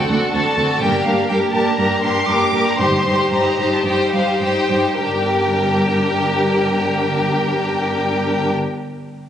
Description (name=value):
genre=quick classical-period movement for symphony orchestra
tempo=102-126 BPM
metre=4/4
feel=straight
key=G minor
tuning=A4 = 440 Hz
part: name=rich chamber violin section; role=melody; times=0.0-8.5 s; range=F5 to D6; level=-23 LUFS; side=left 1 dB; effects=none
part: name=clear chamber violin section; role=second line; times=0.0-8.5 s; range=F#4 to C5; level=-18 LUFS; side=left 1 dB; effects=none
part: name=rich chamber viola section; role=accompaniment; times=0.0-8.5 s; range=G3 to Eb4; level=-23 LUFS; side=right 1 dB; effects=none
part: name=rich chamber double bass section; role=bass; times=0.0-8.5 s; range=G1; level=-26 LUFS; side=equal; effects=none
part: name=warm chamber cello section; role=bass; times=0.1-8.5 s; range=D2 to G2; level=-25 LUFS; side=right 2 dB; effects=none
room=moderate scoring stage reverb, RT60 2.0 s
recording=recorded on a phone in the room, studio reverb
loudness=-15 LUFS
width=side -9 dB against mid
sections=0.0-5.0 A section; 5.0-9.3 B section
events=slowing down 0.0-5.0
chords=0.0 D7; 0.8 Gm; 2.8 Cm/G; 5.0 Gm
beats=0.33 | 0.81 1.29 1.78 2.27 | 2.78 3.31 3.84 4.40 | 4.98 5.56 6.14 6.72 | 7.30 7.88 8.45